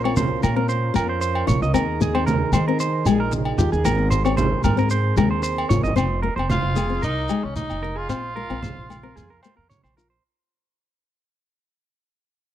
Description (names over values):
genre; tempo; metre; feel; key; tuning
highlife guitar band; 114 BPM; 4/4; straight; unclear; A4 = 440 Hz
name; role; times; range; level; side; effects
overdriven combo organ; sustained chords; 0.0-5.9 s; C4 to Bb4; -30 LUFS; equal; wide subtle chorus
electric guitar at the edge of break-up; arpeggios; 0.0-10.2 s; G4 to Eb5; -26 LUFS; right 5 dB; slapback echo
upright bass; bass; 0.0-10.2 s; F1 to Eb3; -24 LUFS; equal; none
nylon-string guitar; accompaniment; 0.1-10.2 s; Ab3 to F4; -25 LUFS; left 8 dB; none
agogo bells; percussion; 0.1-10.0 s; none; -32 LUFS; left 1 dB; none
congas; percussion; 0.2-10.0 s; none; -26 LUFS; right 3 dB; none
shekere; percussion; 0.2-10.1 s; none; -26 LUFS; left 1 dB; none
raspy tenor saxophone; melody; 6.5-9.7 s; Db4 to F4; -29 LUFS; equal; slapback echo
room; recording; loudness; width
studio reverb; dry, close 1970s-style studio recording; -19 LUFS; side -11 dB against mid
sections
0.0-6.0 A section; 6.0-10.2 B section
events
fade-out 6.0-10.2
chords
0.0 Bbm; 1.8 Ebsus4; 3.9 Abadd9; 6.0 Fm; 8.1 Bb5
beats
0.17 0.70 1.22 | 1.75 2.28 2.80 3.33 | 3.85 4.38 4.91 5.44 | 5.97 6.50 7.03 7.56 | 8.09 8.63 9.16 9.69